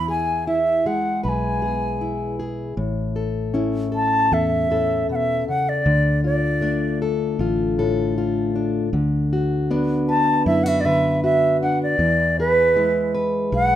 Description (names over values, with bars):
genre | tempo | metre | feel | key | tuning
acoustic folk duo or small band | 78 BPM | 4/4 | straight | A major | A4 = 440 Hz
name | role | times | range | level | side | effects
bright wooden flute | melody | 0.0-13.8 s | B4 to B5 | -20 LUFS | right 1 dB | none
fingerpicked plugged-in steel-string acoustic guitar | accompaniment | 0.0-13.8 s | A2 to B4 | -22 LUFS | left 2 dB | none
fingered electric bass | bass | 0.0-13.8 s | A1 to F#2 | -28 LUFS | equal | none
room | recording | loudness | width
wet studio reverb, RT60 0.5 s | rough home demo mix | -18 LUFS | side -11 dB against mid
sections
0.0-2.8 A section; 2.8-13.8 B section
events
flute solo 2.8-13.8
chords
0.0 E; 2.8 A; 5.9 Dm; 8.9 Bm/D; 12.0 E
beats
0.48 1.25 2.02 | 2.78 3.55 4.32 5.09 | 5.86 6.62 7.39 8.16 | 8.93 9.69 10.46 11.22 | 11.99 12.76 13.52